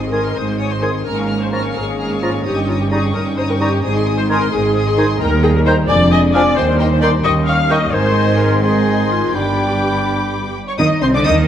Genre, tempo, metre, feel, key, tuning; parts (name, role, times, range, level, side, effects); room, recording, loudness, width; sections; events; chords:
quick classical-period movement for symphony orchestra; 86 BPM (dotted quarters); 6/8; rubato; Ab major, C minor from 5.2 s; A4 = 441 Hz
rich studio violin section; melody; 0.0-11.3 s; Ab5 to F6; -27 LUFS; left 3 dB
warm studio violin section; second line; 0.0-11.5 s; C5 to C6; -28 LUFS; left 2 dB
rich studio viola section; accompaniment; 0.0-11.3 s; C4 to F5; -20 LUFS; left 2 dB
warm French horn section; sustained chords; 0.0-11.4 s; D3 to Eb4; -23 LUFS; left 2 dB
rich studio cello section; bass; 0.0-11.5 s; Eb2 to Eb3; -20 LUFS; right 2 dB
rich studio double bass section; bass; 0.0-11.5 s; F1 to Eb2; -21 LUFS; right 2 dB
large flute ensemble; second line; 0.1-11.3 s; C5 to Db6; -25 LUFS; left 2 dB
warm clarinet; second line; 0.1-11.5 s; D4 to Eb5; -28 LUFS; left 2 dB
warm oboe; second line; 0.1-11.4 s; C5 to Bb5; -27 LUFS; equal
mellow bassoon; accompaniment; 0.1-11.5 s; Eb3 to Eb4; -25 LUFS; right 2 dB
clear trumpet section; stabs; 10.7-11.4 s; C5 to Eb5; -23 LUFS; right 1 dB
wet scoring stage reverb, RT60 1.7 s; -13 LUFS; side -10 dB against mid
0.0-10.8 A section
0.0 Ab; 1.1 Bbm7/Ab; 2.5 Eb7/G; 3.8 Ab; 5.2 Eb; 5.9 Ddim/F; 6.6 Cm/Eb; 7.2 Eb7; 7.9 Ab; 9.3 G; 10.8 Cm